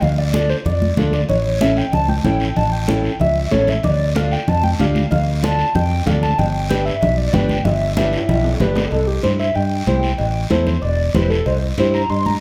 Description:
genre	latin, cumbia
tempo	189 BPM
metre	4/4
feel	straight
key	C major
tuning	A4 = 440 Hz
part	pure sine lead	melody	0.0-12.4 s	G4 to C6	-24 LUFS	equal	chorus, plate reverb
part	fingered electric bass	bass	0.0-12.4 s	E1 to G2	-22 LUFS	equal	none
part	congas	percussion	0.0-12.4 s	none	-24 LUFS	equal	none
part	cowbell and timbales	percussion	0.0-12.3 s	none	-30 LUFS	equal	none
part	guiro	percussion	0.0-12.4 s	none	-34 LUFS	equal	none
part	flamenco guitar	accompaniment	0.3-12.0 s	C#4 to C5	-24 LUFS	equal	none
room	moderate large studio reverb, RT60 0.9 s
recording	heard from further back in the room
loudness	-18 LUFS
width	mono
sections	0.0-8.9 A section; 8.9-12.4 B section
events	drum fill 8.0-8.9; soft synth lead solo 8.9-12.4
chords	0.0 Dm; 1.3 A7; 3.8 Dm; 6.4 G6; 8.9 C; 10.2 Am; 10.8 Em; 11.5 C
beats	| 0.02 0.34 0.65 0.97 | 1.29 1.61 1.93 2.25 | 2.57 2.88 3.20 3.52 | 3.84 4.16 4.48 4.80 | 5.11 5.43 5.75 6.07 | 6.39 6.70 7.02 7.34 | 7.66 7.97 8.29 8.61 | 8.93 9.24 9.56 9.88 | 10.20 10.51 10.83 11.15 | 11.46 11.78 12.10

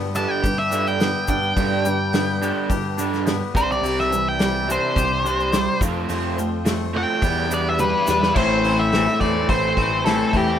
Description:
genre	indie rock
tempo	106 BPM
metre	4/4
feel	straight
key	A minor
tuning	A4 = 436 Hz
part	phased analog pad	sustained chords	0.0-10.6 s	C3 to C6	-34 LUFS	equal	none
part	crunchy overdriven guitar	riff	0.0-10.6 s	G2 to E4	-25 LUFS	right 6 dB	wide subtle chorus
part	twangy electric guitar	riff	0.0-10.6 s	E2 to G4	-26 LUFS	left 8 dB	none
part	growling picked electric bass	bass	0.0-10.6 s	A1 to G2	-28 LUFS	equal	overdrive
part	tube shaker	percussion	0.1-8.2 s	none	-36 LUFS	left 3 dB	none
part	octave-fuzz lead guitar	melody	0.2-10.6 s	G4 to A5	-22 LUFS	equal	distortion, analog delay
part	loose indie drum kit	drums	0.4-10.5 s	crash cymbal, hi-hat, kick drum, snare drum, toms	-25 LUFS	equal	none
room	small room ambience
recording	rough home demo mix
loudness	-18 LUFS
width	side -9 dB against mid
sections	0.0-8.4 A section; 8.4-10.6 B section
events	lead electric guitar solo 0.0-8.4; drum fill 7.8-8.4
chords	0.0 G; 3.6 Cadd9; 5.8 Fadd9; 7.2 Em7; 8.4 Am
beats	0.44 1.01 | 1.57 2.14 2.71 3.27 | 3.84 4.40 4.97 5.53 | 6.10 6.66 7.23 7.79 | 8.36 8.92 9.49 10.05

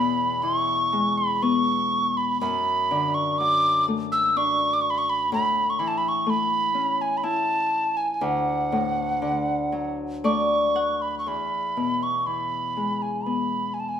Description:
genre	celtic folk, Celtic slow air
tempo	61 BPM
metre	3/4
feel	rubato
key	E mixolydian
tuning	A4 = 441 Hz
part	mellow hollow tin whistle	melody	0.0-14.0 s	F#5 to E6	-23 LUFS	right 2 dB	none
part	Celtic harp	accompaniment	0.0-14.0 s	D2 to F#5	-27 LUFS	left 4 dB	none
room	moderate recital hall reverb, RT60 1.4 s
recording	minimal, uncompressed stereo recording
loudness	-21 LUFS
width	side -9 dB against mid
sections	0.0-11.3 A section; 11.3-14.0 A section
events	harp fill 9.7-11.3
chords	0.0 E; 2.4 D/F#; 5.3 A; 8.2 D; 11.3 E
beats	0.42 1.42 | 2.41 3.39 4.36 | 5.32 6.27 7.23 | 8.21 9.21 10.23 | 11.26 12.26 13.25

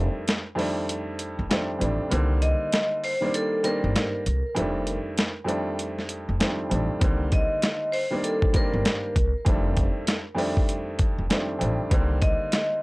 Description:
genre	hip hop, boom-bap hip-hop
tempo	98 BPM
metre	4/4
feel	swing 61% on 16ths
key	unclear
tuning	A4 = 444 Hz
part	warm upright piano	accompaniment	0.0-12.8 s	F2 to D4	-28 LUFS	equal	cassette tape
part	upright bass	bass	0.0-12.3 s	F1 to C2	-26 LUFS	equal	transformer saturation
part	dusty soul sampler-style drum kit	drums	0.3-12.7 s	hi-hat, kick drum, snare drum	-25 LUFS	equal	overdrive
part	vibraphone with hard mallets	melody	2.4-12.8 s	A4 to Eb5	-28 LUFS	equal	analog delay
room	little or no reverb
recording	dry, gritty hardware recording, cassette tape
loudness	-22 LUFS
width	side -24 dB against mid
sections	0.0-12.8 A section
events	break 0.0-7.0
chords	0.0 F13; 2.1 Cm7; 4.6 F13; 7.0 Cm7; 9.5 F13; 11.9 Cm7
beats	0.28 0.89 1.51 | 2.12 2.73 3.34 3.96 | 4.57 5.18 5.79 6.40 | 7.02 7.63 8.24 8.85 | 9.46 10.08 10.69 11.30 | 11.91 12.53

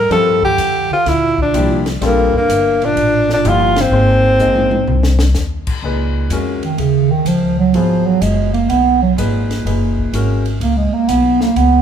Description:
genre	modal jazz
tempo	126 BPM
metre	4/4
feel	swing 67% on 8ths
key	unclear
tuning	A4 = 440 Hz
part	breathy tenor saxophone	melody	0.0-5.4 s	Bb3 to Bb4	-14 LUFS	equal	none
part	dark bass clarinet	second line	0.0-11.8 s	G2 to B3	-16 LUFS	right 3 dB	none
part	upright bass	bass	0.0-11.8 s	F#1 to G2	-18 LUFS	equal	none
part	clear concert grand piano	accompaniment	0.1-10.4 s	A#2 to D#5	-21 LUFS	left 2 dB	none
part	compact cocktail drum kit	drums	0.1-11.7 s	crash cymbal, hi-hat, kick drum, ride cymbal, snare drum, toms	-26 LUFS	equal	none
room	moderate large studio reverb, RT60 1.2 s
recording	band playing live in one room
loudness	-12 LUFS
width	side -8 dB against mid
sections	0.0-5.8 A section; 5.8-11.8 B section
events	band accent 3.7; drum fill 4.4-5.4; bass clarinet solo 5.8-11.8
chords	0.0 Gm9; 3.9 G#; 5.8 C#13sus4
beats	| 0.11 0.58 1.06 1.54 | 2.02 2.49 2.97 3.45 | 3.93 4.40 4.88 5.36 | 5.84 6.31 6.79 7.27 | 7.75 8.22 8.70 9.18 | 9.66 10.14 10.61 11.09 | 11.57

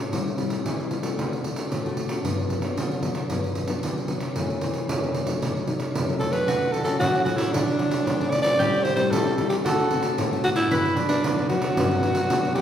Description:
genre	samba and choro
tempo	113 BPM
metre	4/4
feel	straight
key	D major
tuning	A4 = 439 Hz
part	nylon-string guitar	accompaniment	0.0-12.6 s	F#2 to F#4	-27 LUFS	left 2 dB	none
part	pandeiro	percussion	0.1-12.6 s	none	-26 LUFS	right 1 dB	none
part	growling alto saxophone	melody	6.2-12.6 s	D4 to D5	-23 LUFS	equal	none
part	mandolin	second line	6.5-12.6 s	F#4 to B4	-29 LUFS	right 1 dB	none
room	wet recital hall reverb, RT60 1.4 s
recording	recorded in a church or concert hall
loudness	-22 LUFS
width	side -9 dB against mid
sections	0.0-6.5 A section; 6.5-12.6 B section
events	none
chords	0.1 Am7; 1.2 D7; 2.2 Gmaj7; 4.4 F#m7b5; 5.4 B7; 6.5 Dmaj7; 8.6 Am7; 9.7 D7; 10.7 Gmaj7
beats	| 0.12 0.65 1.18 1.71 | 2.24 2.77 3.30 3.83 | 4.36 4.89 5.42 5.95 | 6.47 7.00 7.53 8.06 | 8.59 9.12 9.65 10.18 | 10.71 11.24 11.77 12.30

